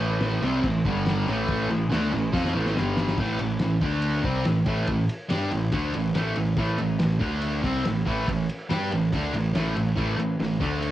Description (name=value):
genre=garage rock duo or trio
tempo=141 BPM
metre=4/4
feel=straight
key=A minor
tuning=A4 = 440 Hz
part: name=fuzz guitar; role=riff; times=0.0-10.9 s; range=G2 to G4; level=-25 LUFS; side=right 1 dB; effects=distortion
part: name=fuzz picked electric bass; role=bass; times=0.0-10.9 s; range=G1 to G2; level=-29 LUFS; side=equal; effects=overdrive
part: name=cloth-damped thuddy drum kit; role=drums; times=0.0-10.9 s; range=crash cymbal, kick drum, ride cymbal, snare drum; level=-30 LUFS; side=equal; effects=cassette tape
room=small room ambience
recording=home recording on cassette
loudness=-22 LUFS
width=side -13 dB against mid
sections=0.0-3.2 A section; 3.2-10.9 B section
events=drum fill 2.3-3.2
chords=0.0 Am; 0.8 G5; 1.3 Am; 2.8 G5; 3.2 A5; 3.8 D5; 4.2 Am; 7.2 D5; 7.6 Am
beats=0.21 0.63 1.06 | 1.48 1.90 2.33 2.75 | 3.17 3.60 4.02 4.45 | 4.87 5.30 5.72 6.15 | 6.57 7.00 7.42 7.85 | 8.27 8.70 9.12 9.54 | 9.97 10.39 10.82